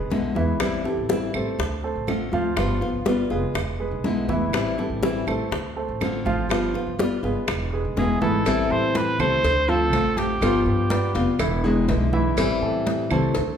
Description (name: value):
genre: latin, Cuban son and guajira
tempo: 122 BPM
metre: 4/4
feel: straight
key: A minor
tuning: A4 = 439 Hz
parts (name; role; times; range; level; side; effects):
- dark baby grand piano; arpeggios; 0.0-13.5 s; E3 to F5; -28 LUFS; right 3 dB; none
- upright bass; bass; 0.0-13.6 s; E1 to A2; -27 LUFS; equal; none
- nylon-string guitar; accompaniment; 0.1-13.4 s; B2 to F4; -25 LUFS; left 4 dB; none
- bongos and cowbell; percussion; 0.1-13.6 s; none; -29 LUFS; left 2 dB; none
- congas; percussion; 0.1-13.6 s; none; -30 LUFS; right 1 dB; none
- claves; percussion; 0.6-13.4 s; none; -36 LUFS; right 6 dB; none
- warm trumpet; melody; 8.0-11.4 s; G4 to C5; -24 LUFS; right 1 dB; none
room: wet large studio reverb, RT60 1.4 s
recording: band playing live in one room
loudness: -20 LUFS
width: side -8 dB against mid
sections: 0.0-8.5 A section; 8.5-13.6 B section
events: drum fill 8.2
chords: 0.0 E7; 0.6 Am7; 1.6 Dm7; 2.6 G7; 3.6 E7; 4.5 Am7; 5.5 Dm7; 6.5 G7; 7.5 E7; 8.5 Am7; 9.4 Dm7; 10.4 G7; 11.4 E7; 12.4 Am7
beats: 0.12 | 0.61 1.10 1.59 2.08 | 2.57 3.06 3.56 4.05 | 4.54 5.03 5.52 6.01 | 6.50 6.99 7.49 7.97 | 8.46 8.96 9.44 9.93 | 10.42 10.91 11.40 11.89 | 12.38 12.87 13.35